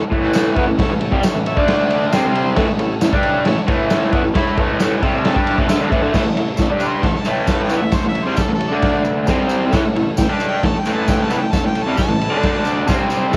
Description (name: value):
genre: garage rock duo or trio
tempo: 134 BPM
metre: 4/4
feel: straight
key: A mixolydian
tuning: A4 = 439 Hz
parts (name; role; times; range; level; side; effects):
- combo organ; sustained chords; 0.0-13.4 s; C4 to C6; -28 LUFS; equal; spring reverb, cassette tape
- raw garage guitar; riff; 0.0-13.4 s; G2 to A4; -20 LUFS; equal; overdrive, cassette tape
- raw garage drum kit; drums; 0.1-13.4 s; crash cymbal, kick drum, ride cymbal, snare drum; -21 LUFS; equal; cassette tape
- tambourine; percussion; 0.3-13.4 s; none; -38 LUFS; equal; none
- clear harmonica; melody; 6.9-12.9 s; A4 to C6; -28 LUFS; equal; overdrive, cassette tape
room: light reverb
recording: home recording on cassette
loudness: -17 LUFS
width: mono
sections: 0.0-6.1 A section; 6.1-13.4 B section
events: transistor combo organ fill 1.2-2.6, 4.8-6.1; harmonica solo 6.1-13.4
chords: 0.0 A; 1.6 D5; 2.1 C5; 2.6 A; 8.7 D5; 9.3 C5; 9.7 A; 12.3 D5; 12.9 C5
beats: 0.34 | 0.79 1.23 1.68 2.12 | 2.57 3.02 3.46 3.91 | 4.35 4.80 5.25 5.69 | 6.14 6.59 7.04 7.49 | 7.93 8.38 8.83 9.28 | 9.73 10.18 10.63 11.08 | 11.53 11.98 12.43 12.89 | 13.34